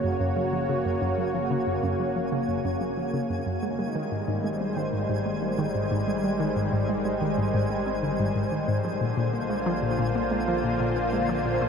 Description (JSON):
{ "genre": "ambient, sequencer-driven space music", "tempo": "92 BPM", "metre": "4/4", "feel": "straight", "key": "unclear", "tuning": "A4 = 439 Hz", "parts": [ { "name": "lush unison pad", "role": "sustained chords", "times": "0.0-11.7 s", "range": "Db3 to Db5", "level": "-26 LUFS", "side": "equal", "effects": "chorus" }, { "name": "hollow square pluck", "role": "riff", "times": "0.0-11.7 s", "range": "Gb2 to C4", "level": "-28 LUFS", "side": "left 1 dB", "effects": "chorus, phaser, ping-pong delay" }, { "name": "analog drone", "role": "bass", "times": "0.0-11.7 s", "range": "Gb1 to Bb1", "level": "-41 LUFS", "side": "equal", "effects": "chorus" }, { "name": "twinkling granular texture", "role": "texture", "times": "0.0-11.7 s", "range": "Ab5", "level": "-42 LUFS", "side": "right 1 dB", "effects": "built-in reverb" } ], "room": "wet huge ambient reverb, RT60 7.5 s", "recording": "dark, warm production", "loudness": "-24 LUFS", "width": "side -6 dB against mid", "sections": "0.0-11.7 A section", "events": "fade-in on synth drone 0.0-11.7; fade-in on synth texture 0.0-11.7; filter sweep on synth arpeggio sound 0.0-11.7", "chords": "0.0 Gb; 3.6 Abmaj7; 8.8 Bbadd9", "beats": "0.37 | 1.02 1.67 2.32 2.98 | 3.63 4.28 4.93 5.58 | 6.24 6.89 7.54 8.19 | 8.85 9.50 10.15 10.80 | 11.46" }